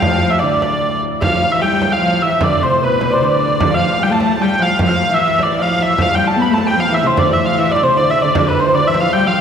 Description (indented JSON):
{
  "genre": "medieval dance",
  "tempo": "151 BPM",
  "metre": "3/4",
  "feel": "straight",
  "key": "D dorian",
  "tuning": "A4 = 440 Hz",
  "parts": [
    { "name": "dark hurdy-gurdy", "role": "melody", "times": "0.0-9.4 s", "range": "B4 to B5", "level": "-15 LUFS", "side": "equal", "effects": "none" },
    { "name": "concert harp", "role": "second line", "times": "0.0-9.4 s", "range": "B4 to B5", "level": "-22 LUFS", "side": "right 2 dB", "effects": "none" },
    { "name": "rich viola da gamba", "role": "second line", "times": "0.0-9.4 s", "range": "B2 to B3", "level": "-18 LUFS", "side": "left 1 dB", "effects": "none" },
    { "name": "hand-pumped harmonium", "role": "drone", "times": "0.0-9.4 s", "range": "D2 to A2", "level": "-26 LUFS", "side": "left 1 dB", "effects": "none" },
    { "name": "frame drum", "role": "percussion", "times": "0.0-9.1 s", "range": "none", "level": "-22 LUFS", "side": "right 1 dB", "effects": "none" }
  ],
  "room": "wet concert hall reverb, RT60 2.3 s",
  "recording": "recorded in a church or concert hall",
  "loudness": "-12 LUFS",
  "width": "side -7 dB against mid",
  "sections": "0.0-1.2 A section; 1.2-9.4 B section",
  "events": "none",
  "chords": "none",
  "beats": "| 0.02 0.42 0.82 | 1.22 1.62 2.02 | 2.42 2.81 3.21 | 3.61 4.01 4.40 | 4.80 5.20 5.59 | 5.99 6.38 6.78 | 7.17 7.57 7.96 | 8.36 8.75 9.14"
}